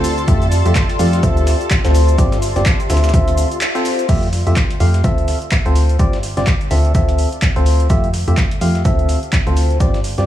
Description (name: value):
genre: piano house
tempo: 126 BPM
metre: 4/4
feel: swing 58% on 16ths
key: D minor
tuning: A4 = 440 Hz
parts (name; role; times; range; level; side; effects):
- analog string pad; sustained chords; 0.0-4.1 s; A4 to A5; -30 LUFS; equal; ensemble chorus, sidechain pumping
- percussive organ stab; riff; 0.0-10.3 s; A3 to F5; -20 LUFS; left 1 dB; chorus, sidechain pumping, dub echo
- plucky analog bass; bass; 0.0-10.3 s; G1 to G2; -15 LUFS; equal; sidechain pumping
- dusty soul sampler-style drum kit; drums; 0.0-10.3 s; hi-hat, shaker, snare drum; -34 LUFS; equal; none
- punchy analog drum machine; drums; 0.0-10.3 s; cabasa, crash cymbal, handclaps, hi-hat; -24 LUFS; equal; overdrive
- ethereal airy pad; texture; 0.0-4.1 s; F4 to C6; -25 LUFS; left 1 dB; ensemble chorus, built-in reverb, sidechain pumping
- electronic kick drum; drums; 0.3-9.9 s; none; -17 LUFS; equal; overdrive
room: digital ambience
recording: small room reverb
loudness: -13 LUFS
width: side -12 dB against mid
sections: 0.0-4.1 A section; 4.1-10.3 B section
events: drop 0.0-4.1; break 3.6-4.1; band accent 3.6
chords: 0.3 Fmaj9; 1.2 Dm7; 2.2 G7sus4; 2.9 Dm7; 4.1 Fmaj9; 5.0 Dm7; 6.0 G7sus4; 6.7 Dm7; 7.9 Fmaj9; 8.9 Dm7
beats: | 0.28 0.76 1.23 1.71 | 2.19 2.66 3.14 3.61 | 4.09 4.57 5.04 5.52 | 5.99 6.47 6.95 7.42 | 7.90 8.38 8.85 9.33 | 9.80